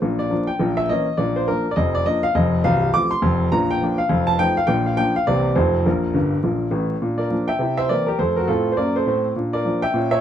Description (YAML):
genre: jazz, stride piano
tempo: 206 BPM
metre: 4/4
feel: swing 61% on 8ths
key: Bb major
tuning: A4 = 438 Hz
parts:
  - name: warm grand piano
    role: solo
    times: 0.0-10.2 s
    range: C1 to D6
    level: -18 LUFS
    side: equal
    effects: none
room: moderate studio reverb, RT60 0.6 s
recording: vinyl crackle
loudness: -18 LUFS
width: side -10 dB against mid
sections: 0.0-7.0 A section; 7.0-10.2 A section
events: grand piano fill 6.1-7.0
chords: 0.0 Bb; 0.6 Bbdim; 1.2 Bb; 2.4 F7; 3.5 Bb; 4.1 F7; 4.7 Bb; 5.3 C7; 5.6 F7; 5.9 Gmadd9; 7.0 Bb; 7.6 C7; 8.2 F; 9.4 Bb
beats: | 0.02 0.31 0.60 0.89 | 1.19 1.48 1.77 2.06 | 2.35 2.64 2.94 3.23 | 3.52 3.81 4.10 4.39 | 4.69 4.98 5.27 5.56 | 5.85 6.15 6.44 6.73 | 7.02 7.31 7.61 7.90 | 8.19 8.48 8.77 9.07 | 9.36 9.65 9.94